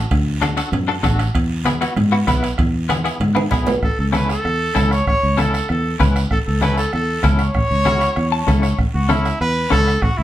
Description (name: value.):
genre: latin, cumbia.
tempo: 194 BPM.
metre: 4/4.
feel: straight.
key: A major.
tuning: A4 = 439 Hz.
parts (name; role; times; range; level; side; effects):
fingered electric bass; bass; 0.0-10.2 s; A1 to G#2; -19 LUFS; equal; none.
bombo; percussion; 0.1-10.2 s; none; -23 LUFS; right 1 dB; none.
congas; percussion; 0.1-10.2 s; none; -26 LUFS; left 1 dB; none.
guiro; percussion; 0.1-10.2 s; none; -34 LUFS; right 4 dB; none.
timbales; percussion; 0.1-3.7 s; none; -27 LUFS; right 4 dB; none.
semi-hollow electric guitar; accompaniment; 0.4-9.9 s; B3 to A5; -21 LUFS; left 3 dB; tremolo.
clear trumpet; melody; 3.8-10.2 s; E4 to C#5; -21 LUFS; equal; none.
room: wet small room reverb, RT60 0.5 s.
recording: heard from further back in the room.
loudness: -15 LUFS.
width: side -13 dB against mid.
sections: 0.0-3.8 A section; 3.8-10.2 B section.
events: drum fill 3.2-3.8; clean electric guitar fill 8.2-8.8.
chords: 0.0 D; 1.3 E; 3.8 A.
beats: | 0.11 0.42 0.73 1.04 | 1.35 1.66 1.97 2.28 | 2.59 2.90 3.21 3.52 | 3.83 4.14 4.45 4.76 | 5.07 5.38 5.69 6.00 | 6.31 6.62 6.93 7.24 | 7.55 7.86 8.17 8.48 | 8.79 9.10 9.40 9.71 | 10.02.